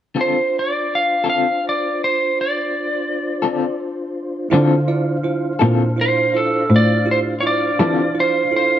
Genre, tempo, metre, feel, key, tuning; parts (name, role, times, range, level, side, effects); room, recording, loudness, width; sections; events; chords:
blues; 55 BPM (dotted quarters); 12/8; straight; D minor; A4 = 440 Hz
electric guitar through a small old amp; accompaniment; 0.1-8.0 s; D3 to A4; -20 LUFS; left 5 dB; tremolo
mellow tonewheel organ; sustained chords; 0.1-8.8 s; D4 to F5; -25 LUFS; left 1 dB; slow rotary speaker, chorus vibrato
lightly driven lead guitar; melody; 0.2-8.8 s; A4 to F5; -18 LUFS; right 1 dB
bell-like tine electric piano; accompaniment; 4.5-8.8 s; E4 to D5; -22 LUFS; right 4 dB
clear cello; bass; 4.5-8.8 s; A2 to E3; -19 LUFS; equal
moderate spring reverb, RT60 1.8 s; -16 LUFS; side -11 dB against mid
0.2-4.5 A section; 4.5-8.8 B section
0.2 Dm7